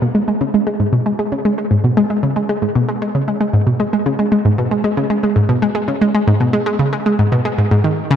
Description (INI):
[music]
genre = ambient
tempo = 115 BPM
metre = 4/4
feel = straight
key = G# minor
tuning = A4 = 441 Hz
[part]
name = analog pluck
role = solo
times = 0.0-8.2 s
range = G#2 to G#3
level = -14 LUFS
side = equal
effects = chorus, analog delay
[sound]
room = moderate plate reverb, RT60 2.2 s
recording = dark, warm production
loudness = -14 LUFS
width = side -9 dB against mid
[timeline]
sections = 0.0-8.2 A section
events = none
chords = none